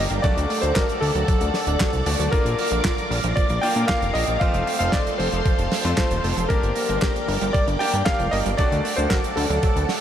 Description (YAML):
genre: italo disco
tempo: 115 BPM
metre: 4/4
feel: straight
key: unclear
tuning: A4 = 439 Hz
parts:
  - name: clear electric grand piano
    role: melody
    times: 0.0-10.0 s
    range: A4 to G5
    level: -25 LUFS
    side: equal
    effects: analog delay
  - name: string machine, full ensemble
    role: sustained chords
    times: 0.0-10.0 s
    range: A4 to D6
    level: -28 LUFS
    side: equal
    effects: phaser, ensemble chorus
  - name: wide unison pluck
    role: arpeggios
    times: 0.0-10.0 s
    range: F3 to Bb4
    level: -32 LUFS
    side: right 2 dB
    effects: analog delay
  - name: bright grand piano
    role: stabs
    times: 0.0-10.0 s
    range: A3 to D5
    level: -31 LUFS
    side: left 3 dB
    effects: analog delay
  - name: fat analog bass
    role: bass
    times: 0.0-9.9 s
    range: D1 to Bb2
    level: -25 LUFS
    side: equal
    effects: tube saturation
  - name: damped 70s drum kit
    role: drums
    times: 0.1-10.0 s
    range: handclaps, hi-hat, snare drum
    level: -28 LUFS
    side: right 2 dB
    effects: studio reverb
  - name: electronic kick drum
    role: drums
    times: 0.2-9.7 s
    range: none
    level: -23 LUFS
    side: equal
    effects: studio reverb
room: moderate huge ambient reverb, RT60 8.4 s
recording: dreamy mix soaked in reverb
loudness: -19 LUFS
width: side -10 dB against mid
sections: 0.0-10.0 A section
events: none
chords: 0.2 D; 2.3 Bb; 4.4 F; 6.5 Gm; 8.6 D